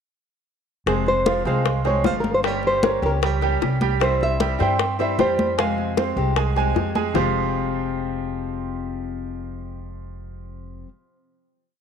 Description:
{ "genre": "latin, Cuban son and guajira", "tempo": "153 BPM", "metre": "4/4", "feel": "straight", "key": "F harmonic minor", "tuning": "A4 = 441 Hz", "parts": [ { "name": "nylon-string guitar", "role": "melody", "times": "0.9-6.7 s", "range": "Ab4 to G5", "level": "-23 LUFS", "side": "equal", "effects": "none" }, { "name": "fingerpicked steel-string acoustic guitar", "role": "accompaniment", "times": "0.9-10.9 s", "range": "F2 to G4", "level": "-28 LUFS", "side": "left 12 dB", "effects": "none" }, { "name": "bright baby grand piano", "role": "arpeggios", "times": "0.9-10.8 s", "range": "F3 to Ab5", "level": "-26 LUFS", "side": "right 12 dB", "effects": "none" }, { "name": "upright bass", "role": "bass", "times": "0.9-10.8 s", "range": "F1 to G2", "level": "-26 LUFS", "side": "equal", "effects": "none" }, { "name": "bongos", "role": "percussion", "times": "0.9-7.2 s", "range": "none", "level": "-26 LUFS", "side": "left 12 dB", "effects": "none" }, { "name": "congas", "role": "percussion", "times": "0.9-7.2 s", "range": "none", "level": "-28 LUFS", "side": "left 1 dB", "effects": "none" } ], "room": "moderate plate reverb, RT60 2.8 s", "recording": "1960s-style stereo with parts hard left and right", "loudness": "-19 LUFS", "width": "side -7 dB against mid", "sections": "0.9-7.2 A section; 7.2-10.3 final chord", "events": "none", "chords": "0.9 Fm; 2.4 Gdim; 4.0 C; 5.6 Fmadd9" }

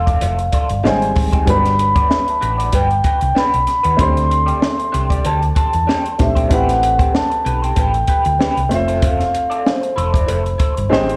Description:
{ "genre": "lush 1970s-style soul", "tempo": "95 BPM", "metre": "4/4", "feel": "swing 54% on 16ths", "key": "unclear", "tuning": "A4 = 444 Hz", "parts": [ { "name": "vibraphone with soft mallets", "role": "melody", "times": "0.0-11.2 s", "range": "C5 to C6", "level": "-20 LUFS", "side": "equal", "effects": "plate reverb, slapback echo" }, { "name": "warm baby grand piano", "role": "accompaniment", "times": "0.0-11.2 s", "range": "F#3 to C5", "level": "-25 LUFS", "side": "equal", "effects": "plate reverb, slapback echo" }, { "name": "electric guitar through a small old amp", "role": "riff", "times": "0.0-11.1 s", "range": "C4 to D5", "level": "-28 LUFS", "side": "equal", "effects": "wah, slapback echo" }, { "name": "hollow-body short-scale fingered electric bass", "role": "bass", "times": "0.0-11.2 s", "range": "E1 to E2", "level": "-22 LUFS", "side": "equal", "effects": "none" }, { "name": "compact cocktail drum kit", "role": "drums", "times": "0.1-11.2 s", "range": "hi-hat, kick drum, snare drum", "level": "-20 LUFS", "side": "equal", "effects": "none" }, { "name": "celesta", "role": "texture", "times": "0.5-11.2 s", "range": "B4 to B5", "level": "-32 LUFS", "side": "equal", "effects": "plate reverb" } ], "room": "light reverb", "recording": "live gig heard through the venue's PA, club reverb", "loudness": "-16 LUFS", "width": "mono", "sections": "0.0-11.2 A section", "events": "none", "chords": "0.0 Fmaj7; 0.8 Abmaj7; 1.5 Gmaj7; 4.0 D7sus4; 6.5 Am9; 8.7 Fmaj7" }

